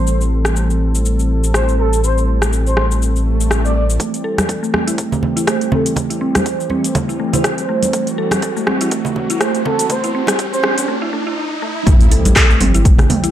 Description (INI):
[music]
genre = afro house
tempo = 122 BPM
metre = 4/4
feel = swing 56% on 16ths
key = A dorian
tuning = A4 = 444 Hz
[part]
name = expressive portamento lead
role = melody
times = 0.0-10.7 s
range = A4 to D5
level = -23 LUFS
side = right 2 dB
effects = lush chorus, dub echo
[part]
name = warm analog pad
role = sustained chords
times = 0.0-13.3 s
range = E3 to A4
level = -23 LUFS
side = left 1 dB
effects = chorus, vintage 12-bit sampler grit, sidechain pumping
[part]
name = warm sub bass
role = bass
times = 0.0-4.0, 11.9-13.1 s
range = G1 to A1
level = -16 LUFS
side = equal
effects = sidechain pumping
[part]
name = house drum kit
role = drums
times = 0.1-13.3 s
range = handclaps, hi-hat, rim click, shaker, toms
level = -19 LUFS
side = equal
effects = small room reverb
[part]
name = swell, riser and impact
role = sound effects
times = 3.2-13.3 s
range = none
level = -24 LUFS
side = equal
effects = none
[part]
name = mallet-like synth pluck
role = arpeggios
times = 4.0-13.3 s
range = A3 to A4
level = -21 LUFS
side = right 2 dB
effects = chorus, sidechain pumping, dub echo
[part]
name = electronic kick drum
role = drums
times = 4.0-13.0 s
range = none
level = -14 LUFS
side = equal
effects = high-pass filter on kick, small room reverb
[part]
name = congas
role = percussion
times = 4.4-13.2 s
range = none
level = -21 LUFS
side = right 2 dB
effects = none
[sound]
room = moderate digital room reverb, RT60 1.0 s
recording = dark, warm production, high-pass filter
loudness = -13 LUFS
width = side -11 dB against mid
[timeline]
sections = 0.0-4.0 A section; 4.0-11.9 B section; 11.9-13.3 C section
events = swell 3.2-4.0; build-up 4.0-11.9; riser 4.0-11.9; filter sweep on synth pluck 4.0-11.9; filter sweep on analog synth lead 4.0-11.9; break 10.9-11.9; drop 11.9-13.3; impact 11.9-13.3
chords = 0.0 Am7